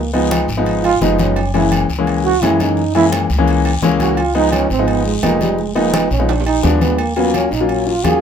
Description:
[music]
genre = Afro-Cuban jazz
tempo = 171 BPM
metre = 4/4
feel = straight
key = Db mixolydian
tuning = A4 = 440 Hz
[part]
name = breathy trombone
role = second line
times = 0.0-8.2 s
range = G3 to Ab4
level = -18 LUFS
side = right 6 dB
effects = none
[part]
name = upright bass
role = bass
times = 0.0-8.2 s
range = F1 to Gb2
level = -20 LUFS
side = equal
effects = none
[part]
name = warm concert grand piano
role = accompaniment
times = 0.1-8.2 s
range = Fb3 to F4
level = -16 LUFS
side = left 3 dB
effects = none
[part]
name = agogo bells and timbales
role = percussion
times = 0.1-8.2 s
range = none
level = -25 LUFS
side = right 4 dB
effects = none
[part]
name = congas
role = percussion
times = 0.1-8.2 s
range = none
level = -23 LUFS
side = left 3 dB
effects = none
[part]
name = guiro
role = percussion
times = 0.3-8.2 s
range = none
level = -30 LUFS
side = left 6 dB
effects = none
[sound]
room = light reverb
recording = minimal, uncompressed stereo recording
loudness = -13 LUFS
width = side -8 dB against mid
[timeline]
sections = 0.0-8.2 A section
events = trombone solo 0.0-8.2; drum fill 6.3-7.0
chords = 0.0 Db7; 1.4 Gb7; 4.2 Db7; 5.6 Fm7b5; 6.3 Bb7b9; 7.0 Ebm7

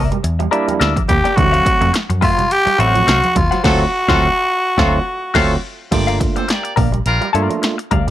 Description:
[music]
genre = funk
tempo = 106 BPM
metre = 4/4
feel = swing 56% on 16ths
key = G dorian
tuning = A4 = 440 Hz
[part]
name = growling tenor saxophone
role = melody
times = 0.0-5.6 s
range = E#4 to G4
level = -16 LUFS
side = equal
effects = plate reverb
[part]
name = semi-hollow electric guitar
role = accompaniment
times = 0.0-8.1 s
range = F#4 to G5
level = -22 LUFS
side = left 9 dB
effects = wah, plate reverb
[part]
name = electric guitar with an envelope filter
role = riff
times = 0.0-8.1 s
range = E#3 to Bb3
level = -25 LUFS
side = right 10 dB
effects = wide subtle chorus
[part]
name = vintage muted picked electric bass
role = bass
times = 0.0-8.1 s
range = G1 to G2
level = -18 LUFS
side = equal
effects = none
[part]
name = punchy analog drum machine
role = drums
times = 0.1-8.1 s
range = crash cymbal, hi-hat, kick drum, snare drum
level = -19 LUFS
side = equal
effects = none
[part]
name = congas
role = percussion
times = 0.1-3.5 s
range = none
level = -27 LUFS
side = right 4 dB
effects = none
[part]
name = overdriven tine electric piano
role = stabs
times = 0.5-7.8 s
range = F#3 to F#4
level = -21 LUFS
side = right 4 dB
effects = plate reverb
[part]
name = clear horn section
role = second line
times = 3.6-7.3 s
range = F#3 to D5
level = -22 LUFS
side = equal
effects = plate reverb
[sound]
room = light reverb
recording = none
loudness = -13 LUFS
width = side -12 dB against mid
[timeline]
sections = 0.0-5.9 A section; 5.9-8.1 B section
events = band accent 3.6-5.9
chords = 0.0 C9 (rootless); 1.4 D7#9; 5.9 Gm7

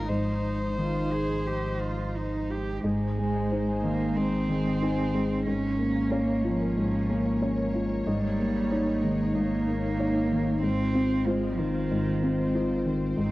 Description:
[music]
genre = neoclassical piano and strings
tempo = 92 BPM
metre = 4/4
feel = rubato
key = Ab major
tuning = A4 = 438 Hz
[part]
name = rich violin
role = melody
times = 0.0-2.5 s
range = Bb4 to C5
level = -34 LUFS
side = left 2 dB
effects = cassette tape
[part]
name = warm cello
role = second line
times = 0.0-13.3 s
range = Eb3 to Ab4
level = -31 LUFS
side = right 3 dB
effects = cassette tape
[part]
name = felt-muted upright piano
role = accompaniment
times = 0.0-13.3 s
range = Ab2 to Db5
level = -27 LUFS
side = left 1 dB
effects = cassette tape
[part]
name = warm studio string section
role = sustained chords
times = 0.0-13.3 s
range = F3 to Db5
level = -36 LUFS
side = right 1 dB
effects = cassette tape
[part]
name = sub bass with octave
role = bass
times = 0.0-13.3 s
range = Ab1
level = -35 LUFS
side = equal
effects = none
[part]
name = concert harp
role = arpeggios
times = 2.8-13.3 s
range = Eb4 to Bb5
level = -39 LUFS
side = left 1 dB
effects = cassette tape, tape echo
[sound]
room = light reverb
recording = home recording on cassette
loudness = -24 LUFS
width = side -18 dB against mid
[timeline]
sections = 0.0-2.8 A section; 2.8-13.3 B section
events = none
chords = 0.1 Fm7/Ab; 2.8 Ab; 5.5 Bbm/Ab; 8.1 Eb7sus4/Ab; 10.6 Fm7/Ab

